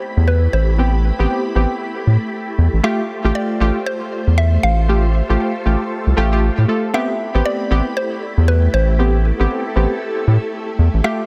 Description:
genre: deep house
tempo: 117 BPM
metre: 4/4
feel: swing 59% on 16ths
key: A minor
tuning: A4 = 440 Hz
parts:
  - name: mallet-like synth pluck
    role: melody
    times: 0.0-11.3 s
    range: B4 to F5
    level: -26 LUFS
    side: equal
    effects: chorus, phaser, tape echo
  - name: soft string machine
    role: sustained chords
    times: 0.0-11.3 s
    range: A3 to B5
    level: -28 LUFS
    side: equal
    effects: phaser, ensemble chorus
  - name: round analog bass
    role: bass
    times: 0.2-11.0 s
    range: A1 to A2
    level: -16 LUFS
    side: equal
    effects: none
  - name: warm analog keys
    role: stabs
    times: 0.8-11.2 s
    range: A3 to A4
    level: -23 LUFS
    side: equal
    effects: chorus, digital delay
room: light reverb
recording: dense, heavily limited modern master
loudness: -17 LUFS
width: mono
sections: 0.0-11.3 A section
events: none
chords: 0.0 Am9; 2.8 Fadd9/A; 6.9 Am9

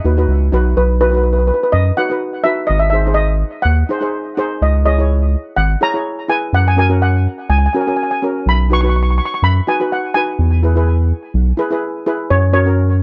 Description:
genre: calypso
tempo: 125 BPM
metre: 4/4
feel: swing 53% on 16ths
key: B major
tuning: A4 = 440 Hz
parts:
  - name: steel pan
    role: melody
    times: 0.0-13.0 s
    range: B4 to C#6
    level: -20 LUFS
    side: equal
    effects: tape echo
  - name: steel pan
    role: accompaniment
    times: 0.0-13.0 s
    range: C#4 to C#5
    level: -22 LUFS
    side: equal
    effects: none
  - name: round analog bass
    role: bass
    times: 0.0-13.0 s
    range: G#1 to F#2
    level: -16 LUFS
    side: equal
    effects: none
room: little or no reverb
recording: dry, close 1970s-style studio recording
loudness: -15 LUFS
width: mono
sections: 0.8-13.0 A section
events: none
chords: 0.0 B; 2.7 G#7; 4.6 C#madd9; 6.5 F#; 8.5 B; 10.4 E; 12.3 F#

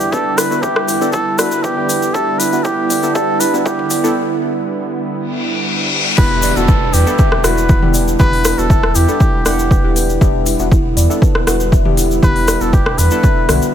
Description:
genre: afro house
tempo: 119 BPM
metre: 4/4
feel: straight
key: E minor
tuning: A4 = 440 Hz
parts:
  - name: trumpet with cup mute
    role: melody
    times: 0.0-13.7 s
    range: G4 to B4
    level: -19 LUFS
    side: right 1 dB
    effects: low-pass filter, tape echo
  - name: warm analog pad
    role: sustained chords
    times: 0.0-13.7 s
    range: D3 to E4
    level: -22 LUFS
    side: right 2 dB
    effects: wide subtle chorus, sidechain pumping
  - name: deep mellow chord stab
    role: stabs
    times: 0.0-13.7 s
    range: B3 to F#5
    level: -22 LUFS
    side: left 3 dB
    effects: chorus, sidechain pumping, tape echo
  - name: warm sub bass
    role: bass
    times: 0.0-13.6 s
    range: E1 to E2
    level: -19 LUFS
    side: equal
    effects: sidechain pumping, high-pass filter
  - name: tube shaker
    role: percussion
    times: 0.0-13.7 s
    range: none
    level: -25 LUFS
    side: left 2 dB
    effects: none
  - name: buzzing kalimba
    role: arpeggios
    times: 0.1-13.6 s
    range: E4 to E5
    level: -20 LUFS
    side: right 1 dB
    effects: sidechain pumping, low-pass filter, tape echo
  - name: afro-pop drum kit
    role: drums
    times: 0.1-13.6 s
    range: crash cymbal, hi-hat, rim click, toms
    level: -20 LUFS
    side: left 1 dB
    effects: high-pass filter on hats, high-pass filter on toms, high-pass filter on snare, high-pass filter on cymbals
  - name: electronic kick drum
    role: drums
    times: 0.1-13.3 s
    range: none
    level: -14 LUFS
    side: equal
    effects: overdrive, high-pass filter on kick
  - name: reverse cymbal and downlifter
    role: sound effects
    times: 5.3-10.2 s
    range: none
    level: -21 LUFS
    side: left 3 dB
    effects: none
room: light reverb, small room ambience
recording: none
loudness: -12 LUFS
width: side -10 dB against mid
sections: 0.0-6.2 A section; 6.2-13.7 B section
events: build-up 0.0-6.2; drum fill 0.0-4.2; filter sweep on kalimba 0.0-6.2; filter sweep on muted trumpet 0.0-6.2; break 4.2-6.2; reverse cymbal 5.3-6.2; drop 6.2-13.7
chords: 0.0 Em7

